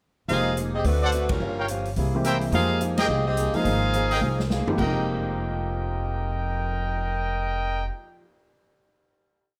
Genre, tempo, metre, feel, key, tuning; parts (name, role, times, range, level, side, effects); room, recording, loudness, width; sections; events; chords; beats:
jazz, big band swing; 213 BPM; 4/4; swing 61% on 8ths; F minor; A4 = 440 Hz
clear saxophone section; melody; 0.3-4.5 s; G3 to F5; -28 LUFS; equal
picked swing-style acoustic guitar; accompaniment; 0.3-8.4 s; G2 to Ab4; -37 LUFS; equal
warm upright piano; accompaniment; 0.3-8.1 s; F2 to Ab4; -32 LUFS; equal
upright bass; bass; 0.3-7.9 s; F1 to F2; -29 LUFS; equal
swinging big-band drum kit; drums; 0.3-7.0 s; crash cymbal, cymbal swell, hi-hat, kick drum, ride cymbal, snare drum, toms; -35 LUFS; equal
bright trumpet section; stabs; 1.0-7.8 s; Ab4 to G5; -31 LUFS; equal
light reverb; -25 LUFS; mono
0.3-4.8 A section; 4.8-7.0 final chord
band accent 1.3, 3.0; drum fill 4.2-4.8
0.3 Fm11; 0.9 D7; 1.4 Gm7b5; 2.0 C7b13; 2.5 Fm11
| 0.30 0.58 0.85 1.13 | 1.41 1.69 1.97 2.25 | 2.53 2.81 3.09 3.38 | 3.66 3.94 4.22 4.50 | 4.78 5.07 5.35 5.63 | 5.91 6.19 6.47 6.76